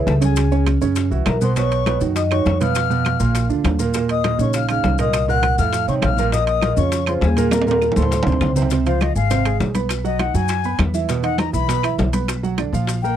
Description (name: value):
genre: Afro-Cuban jazz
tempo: 202 BPM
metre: 4/4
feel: straight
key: unclear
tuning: A4 = 439 Hz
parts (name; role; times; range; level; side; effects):
- warm grand piano; accompaniment; 0.0-13.2 s; A2 to Cb6; -22 LUFS; right 7 dB; none
- upright bass; bass; 0.0-13.1 s; Ab1 to Gb2; -21 LUFS; left 1 dB; none
- vibraphone with soft mallets; melody; 0.1-8.5 s; Ab4 to Gb5; -23 LUFS; left 2 dB; none
- breathy bright concert flute; second line; 0.1-13.2 s; C5 to Gb6; -25 LUFS; left 16 dB; none
- bongos; percussion; 0.1-13.0 s; none; -30 LUFS; left 8 dB; none
- congas; percussion; 0.1-13.2 s; none; -27 LUFS; left 2 dB; none
- maracas; percussion; 0.1-13.2 s; none; -35 LUFS; left 17 dB; none
- timbales; percussion; 0.1-13.0 s; none; -27 LUFS; right 6 dB; none
- claves; percussion; 0.4-12.7 s; none; -30 LUFS; right 18 dB; none
room: light reverb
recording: dry, close 1970s-style studio recording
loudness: -16 LUFS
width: side -10 dB against mid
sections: 0.0-8.7 A section; 8.7-13.2 B section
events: drum fill 7.5-8.7; flute solo 8.7-13.2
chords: 0.4 Db5; 1.0 Gb5; 1.6 Cbadd9; 2.8 Bb5; 3.4 Bb; 3.9 Ebsus2; 5.1 Ebm69/C; 5.7 F7; 6.3 Bbm7; 7.5 Eb5; 8.1 D5; 8.7 Dbmaj7; 9.9 Cb; 11.1 E5; 12.3 Cbm